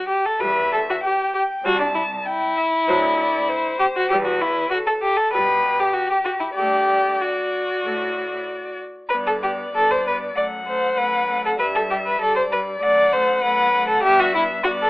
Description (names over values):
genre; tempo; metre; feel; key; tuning
quick classical-period movement for string quartet; 97 BPM; 4/4; straight; G major; A4 = 438 Hz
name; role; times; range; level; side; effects
rich violin; second line; 0.0-14.9 s; D4 to D5; -19 LUFS; equal; none
rich violin; melody; 0.4-14.9 s; G4 to A5; -26 LUFS; left 2 dB; none
warm viola; accompaniment; 0.4-14.9 s; F#3 to B3; -30 LUFS; right 1 dB; none
rich cello; bass; 0.4-14.9 s; C2 to B2; -33 LUFS; right 1 dB; none
room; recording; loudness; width
light reverb; telephone sound; -18 LUFS; side -20 dB against mid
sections
0.0-14.9 A section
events
none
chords
0.4 Em; 1.6 Am7/C; 2.9 D9; 4.1 Em; 6.6 D; 9.1 G; 10.4 F#madd11; 11.6 G5; 12.8 F#madd11; 14.0 G